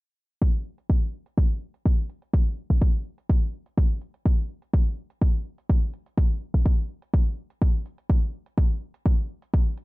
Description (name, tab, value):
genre	piano house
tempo	125 BPM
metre	4/4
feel	straight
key	none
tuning	none
part	electronic hi-hat	drums	0.4-9.8 s	none	-65 LUFS	right 5 dB	none
part	electronic kick drum	drums	0.4-9.6 s	none	-20 LUFS	equal	none
room	little or no reverb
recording	low-pass filter, nothing above 7.7 kHz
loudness	-23 LUFS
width	side -21 dB against mid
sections	0.4-9.8 A section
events	filter sweep 0.4-9.8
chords	none